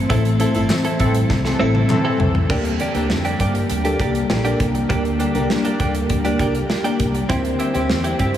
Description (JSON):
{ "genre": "1980s-style pop", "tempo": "100 BPM", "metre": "4/4", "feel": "straight", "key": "unclear", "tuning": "A4 = 440 Hz", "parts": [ { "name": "FM electric piano with soft pad layer", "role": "accompaniment", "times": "0.0-8.4 s", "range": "A2 to C5", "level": "-22 LUFS", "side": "left 1 dB", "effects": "chorus, tremolo, shimmer reverb" }, { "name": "glassy FM pad", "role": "sustained chords", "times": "0.0-8.4 s", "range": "D3 to E4", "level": "-25 LUFS", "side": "left 1 dB", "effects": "ensemble chorus, built-in reverb, tremolo" }, { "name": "fretless electric bass", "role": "bass", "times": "0.0-8.4 s", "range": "G1 to G2", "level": "-23 LUFS", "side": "equal", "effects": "none" }, { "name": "direct-recorded clean electric guitar", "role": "riff", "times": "0.1-8.4 s", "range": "Bb3 to A4", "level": "-24 LUFS", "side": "right 2 dB", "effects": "analog chorus, diffuse ambient delay, shimmer reverb" }, { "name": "modern studio drum kit", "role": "drums", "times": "0.1-8.4 s", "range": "crash cymbal, hi-hat, kick drum, snare drum, tambourine, toms", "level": "-24 LUFS", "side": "equal", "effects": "none" }, { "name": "group handclap", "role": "percussion", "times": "0.7-2.0 s", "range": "none", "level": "barely audible", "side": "none", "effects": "none" }, { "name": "analog synth brass", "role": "stabs", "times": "1.0-2.3 s", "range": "E3 to A4", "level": "-27 LUFS", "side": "left 2 dB", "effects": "chorus, diffuse ambient delay, shimmer reverb" } ], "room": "wet huge ambient reverb, RT60 8.1 s", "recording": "dreamy mix soaked in reverb", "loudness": "-16 LUFS", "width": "side -10 dB against mid", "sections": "0.0-2.5 A section; 2.5-8.4 B section", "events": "band accent 0.1-2.5; drum fill 1.3-2.5", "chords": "0.0 Am; 2.5 Gm; 7.3 C" }